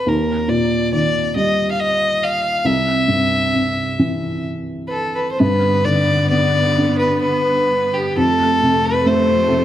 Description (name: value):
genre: celtic folk, Celtic slow air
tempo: 63-72 BPM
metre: 3/4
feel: rubato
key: G mixolydian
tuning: A4 = 440 Hz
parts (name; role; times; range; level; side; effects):
- rich fiddle; melody; 0.0-9.6 s; G4 to F5; -18 LUFS; left 1 dB; none
- felt-muted upright piano; accompaniment; 0.0-9.6 s; C2 to D4; -19 LUFS; equal; none
- clear symphonic string section; sustained chords; 5.4-9.6 s; F2 to B3; -22 LUFS; equal; none
room: moderate scoring stage reverb, RT60 1.9 s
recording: none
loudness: -15 LUFS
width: side -12 dB against mid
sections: 0.0-5.4 A section; 5.4-9.6 A section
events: none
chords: 0.1 Eb; 2.6 C; 5.4 G; 8.2 F